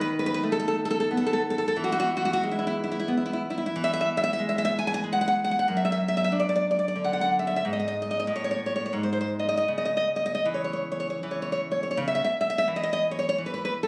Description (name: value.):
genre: romantic piece for solo classical guitar.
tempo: 76-94 BPM.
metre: 3/4.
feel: rubato.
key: E major, C# minor from 3.7 s.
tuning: A4 = 442 Hz.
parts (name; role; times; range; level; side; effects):
nylon-string guitar; solo; 0.0-13.9 s; F#2 to G#5; -27 LUFS; equal; none.
room: light reverb.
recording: recorded on a phone in the room, studio reverb, compression.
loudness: -27 LUFS.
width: mono.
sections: 0.0-12.0 A section; 12.0-13.9 B section.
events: none.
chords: 0.0 B7/D#; 1.7 E; 3.7 Eadd9; 5.7 D/F#; 7.6 N.C.; 9.7 C#m.